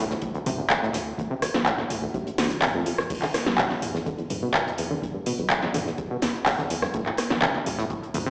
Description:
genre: acid house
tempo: 125 BPM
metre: 4/4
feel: straight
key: E phrygian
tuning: A4 = 441 Hz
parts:
  - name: deep acid bass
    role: riff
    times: 0.0-8.3 s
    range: C2 to D3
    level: -32 LUFS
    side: equal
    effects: tube saturation, subtle chorus, digital delay
  - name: saturated sub bass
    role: bass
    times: 0.0-8.2 s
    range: A1 to E2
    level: -38 LUFS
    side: equal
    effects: tube saturation, sidechain pumping
  - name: damped 70s drum kit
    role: drums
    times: 0.1-8.3 s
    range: hi-hat, snare drum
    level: -44 LUFS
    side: equal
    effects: sidechain pumping on hats, high-pass filter on hats, high-pass filter on snare, high-pass filter on room
  - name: electronic kick drum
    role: drums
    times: 0.2-8.0 s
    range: none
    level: -39 LUFS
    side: equal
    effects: none
  - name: electro analog drum machine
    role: drums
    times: 0.5-8.2 s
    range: crash cymbal, handclaps, hi-hat, rim click, snare drum, toms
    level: -27 LUFS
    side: equal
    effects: none
room: wet spring reverb, RT60 1.2 s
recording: played on a big sound system in a bare room, large studio reverb, small speaker sound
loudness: -26 LUFS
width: mono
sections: 0.0-8.3 A section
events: none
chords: 0.0 D5; 3.1 E5; 6.9 D5

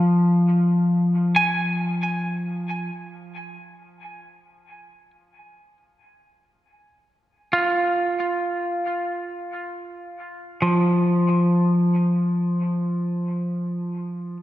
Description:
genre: ambient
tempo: free time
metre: none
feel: none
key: unclear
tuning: A4 = 440 Hz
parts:
  - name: semi-hollow electric guitar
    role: solo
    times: 0.0-14.4 s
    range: F3 to Ab5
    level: -20 LUFS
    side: equal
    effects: spring reverb, dub echo
room: wet plate reverb, RT60 2.5 s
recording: echo-heavy mix, cassette tape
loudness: -20 LUFS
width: side -14 dB against mid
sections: 0.0-14.2 A section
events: none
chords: 0.0 Fm; 3.6 N.C.

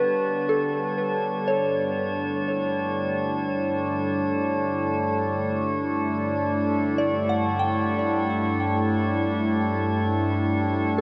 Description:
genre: ambient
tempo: 60 BPM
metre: 3/4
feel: straight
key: unclear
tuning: A4 = 435 Hz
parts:
  - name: airy breathy pad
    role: sustained chords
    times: 0.0-11.0 s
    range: G2 to F#5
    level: -29 LUFS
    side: equal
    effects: chorus
  - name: soft synth bell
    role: arpeggios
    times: 0.0-11.0 s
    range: G4 to G5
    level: -31 LUFS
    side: equal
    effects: chorus, delay
  - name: hand-pumped harmonium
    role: drone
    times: 0.0-11.0 s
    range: G3 to D4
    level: -36 LUFS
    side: equal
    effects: none
  - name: drifting glass-harmonics texture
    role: texture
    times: 0.0-11.0 s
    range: D4 to C#5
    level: -29 LUFS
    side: equal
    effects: chorus, built-in reverb
room: wet huge ambient reverb, RT60 7.6 s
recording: none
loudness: -25 LUFS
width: mono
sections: 0.0-11.0 A section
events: fade-in on analog synth pad 0.0-11.0; fade-in on harmonium 0.0-11.0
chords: 0.0 Gmaj9; 1.5 A7sus4/G; 7.5 Em11/G

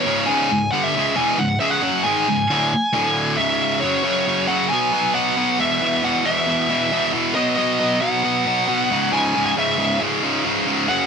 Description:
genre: metal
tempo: 136 BPM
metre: 4/4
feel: straight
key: C# minor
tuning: A4 = 440 Hz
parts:
  - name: high-gain lead guitar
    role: melody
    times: 0.0-11.1 s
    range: C#5 to G#5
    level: -21 LUFS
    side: equal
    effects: distortion, tape echo
  - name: high-gain distorted guitar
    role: riff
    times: 0.0-11.1 s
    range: C#2 to B3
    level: -19 LUFS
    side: equal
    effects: distortion
room: light reverb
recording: none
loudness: -17 LUFS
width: side -6 dB against mid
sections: 0.0-3.8 A section; 3.8-11.1 B section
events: none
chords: 0.0 C#m; 2.9 D5; 3.4 C#m; 3.8 F#5; 4.7 B5; 5.6 E5; 7.4 B; 8.9 C#m

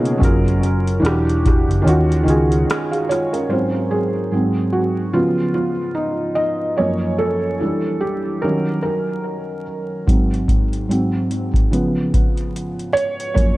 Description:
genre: lo-fi hip hop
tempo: 73 BPM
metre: 4/4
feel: swing 58% on 16ths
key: unclear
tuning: A4 = 440 Hz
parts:
  - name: felt-muted upright piano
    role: accompaniment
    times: 0.0-13.6 s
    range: Gb2 to F5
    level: -18 LUFS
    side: right 1 dB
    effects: cassette tape, low-pass filter, analog delay
  - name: booming analog drum machine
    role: drums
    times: 0.1-3.5, 10.1-13.6 s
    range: hi-hat, kick drum, rim click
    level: -18 LUFS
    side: equal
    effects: vintage 12-bit sampler grit
  - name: vintage muted fingered electric bass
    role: bass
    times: 0.2-2.6 s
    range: E1 to Eb2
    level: -18 LUFS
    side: equal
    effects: none
room: light reverb, small room ambience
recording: echo-heavy mix, vinyl crackle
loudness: -16 LUFS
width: side -18 dB against mid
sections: 0.0-3.5 A section; 3.5-13.6 B section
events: kick muted 1.9-3.5; felt piano solo 3.5-13.6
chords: 0.2 Gbmaj7; 1.0 Em9; 1.9 Ebm9; 3.5 Ab7; 5.1 Db7; 6.8 Gbmaj7; 7.6 Em7; 8.4 Ebm7; 10.1 Ab7; 11.7 Db7

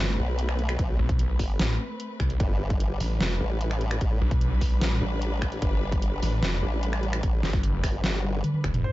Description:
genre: heavy wobble dubstep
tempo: 149 BPM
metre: 4/4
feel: half-time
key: unclear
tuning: A4 = 440 Hz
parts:
  - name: warm studio string section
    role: sustained chords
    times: 0.0-8.9 s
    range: G3 to C5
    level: -35 LUFS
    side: left 2 dB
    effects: sidechain pumping, low-pass filter
  - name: snarling distorted saw bass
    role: bass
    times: 0.0-8.8 s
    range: F1 to C2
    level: -26 LUFS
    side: equal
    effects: distortion, overdrive
  - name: formant-sweep wobble bass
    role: bass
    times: 0.2-8.4 s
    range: G1 to B1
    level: -27 LUFS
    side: equal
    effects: chorus, overdrive
  - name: dubstep drum kit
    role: drums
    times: 0.4-8.8 s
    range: finger snaps, hi-hat, snare drum, toms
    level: -30 LUFS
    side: equal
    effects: overdrive
  - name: electronic kick drum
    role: drums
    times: 0.8-8.7 s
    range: none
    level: -27 LUFS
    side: equal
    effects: overdrive
  - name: bright concert grand piano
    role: melody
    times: 8.8-8.9 s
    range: C5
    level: -31 LUFS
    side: left 3 dB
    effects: none
  - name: sub drop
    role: sound effects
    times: 8.8-8.9 s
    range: none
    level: -27 LUFS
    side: equal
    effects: none
room: little or no reverb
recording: dark, warm production, nothing above 7.7 kHz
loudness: -24 LUFS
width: side -17 dB against mid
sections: 0.0-8.8 A section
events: drop 0.0-8.8; drum fill 8.2-8.8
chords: 0.0 Amadd9; 2.4 G

